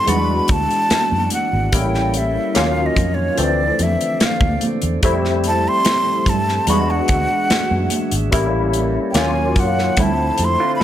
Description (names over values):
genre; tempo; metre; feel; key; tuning
lush 1970s-style soul; 73 BPM; 4/4; straight; unclear; A4 = 440 Hz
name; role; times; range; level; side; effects
breathy jazz flute; melody; 0.0-10.8 s; Db5 to C6; -20 LUFS; equal; none
barky tine electric piano; accompaniment; 0.0-10.8 s; E3 to F#4; -21 LUFS; left 2 dB; overdrive, ensemble chorus
percussive tonewheel organ; sustained chords; 0.0-10.8 s; D3 to G5; -28 LUFS; right 1 dB; fast rotary speaker
vintage muted fingered electric bass; bass; 0.1-10.8 s; G#1 to G2; -21 LUFS; equal; none
modern studio drum kit; drums; 0.1-10.8 s; hi-hat, kick drum, snare drum; -20 LUFS; equal; none
congas; percussion; 0.1-10.6 s; none; -27 LUFS; right 3 dB; none
electric guitar through a small old amp; riff; 10.6-10.8 s; A3 to A4; -22 LUFS; right 5 dB; none
room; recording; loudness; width
light reverb; none; -15 LUFS; side -11 dB against mid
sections
0.0-10.8 A section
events
flute solo 0.0-10.8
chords
0.1 E9; 1.7 A7b9; 2.6 Ebm9; 3.4 Dm9; 5.0 Fmaj9; 6.7 E9; 8.3 A7b9; 9.2 Ebm9; 10.0 Dm9